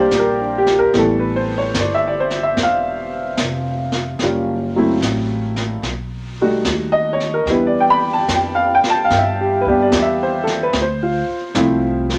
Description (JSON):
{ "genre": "jazz ballad", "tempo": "74 BPM", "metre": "4/4", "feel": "swing 67% on 8ths", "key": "unclear", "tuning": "A4 = 440 Hz", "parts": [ { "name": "warm upright piano", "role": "accompaniment", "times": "0.0-12.2 s", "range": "E3 to B5", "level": "-18 LUFS", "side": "equal", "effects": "none" }, { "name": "upright bass", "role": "bass", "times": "0.0-12.2 s", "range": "E1 to G2", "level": "-28 LUFS", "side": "equal", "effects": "none" }, { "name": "jazz brush drum kit", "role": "drums", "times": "0.1-12.2 s", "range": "brushed snare drum, hi-hat, kick drum, snare drum", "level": "-26 LUFS", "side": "equal", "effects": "none" } ], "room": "light reverb", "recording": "none", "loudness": "-18 LUFS", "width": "mono", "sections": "0.0-12.2 A section", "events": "none", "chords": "0.0 C5; 0.9 Fmaj9#11; 4.2 F#m7b5; 5.8 B7b13; 7.5 Em7; 10.8 Dm7" }